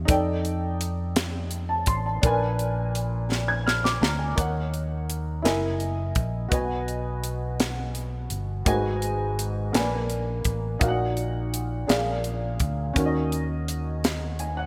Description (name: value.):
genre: slow gospel.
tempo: 56 BPM (dotted quarters).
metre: 6/8.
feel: straight.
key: Eb minor.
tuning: A4 = 439 Hz.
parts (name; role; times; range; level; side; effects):
dark upright piano; accompaniment; 0.0-14.7 s; Ab2 to Ab6; -30 LUFS; equal; lush chorus.
fingered electric bass; bass; 0.0-14.7 s; Gb1 to F2; -31 LUFS; equal; none.
crisp fusion drum kit; drums; 0.1-14.6 s; hi-hat, kick drum, snare drum; -29 LUFS; equal; none.
room: moderate lush hall reverb, RT60 2.8 s.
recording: bright 1980s-style digital production.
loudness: -26 LUFS.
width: mono.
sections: 0.0-4.4 A section; 4.4-14.7 B section.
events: drum fill 3.3-4.4.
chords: 0.1 F13; 2.2 Bb7b9; 4.4 Ebm7; 5.4 Gb13; 6.5 B6; 8.7 Abm7; 9.7 Bb7b9; 10.8 Ebm/Bb; 11.9 Bb7; 13.0 Ebm7.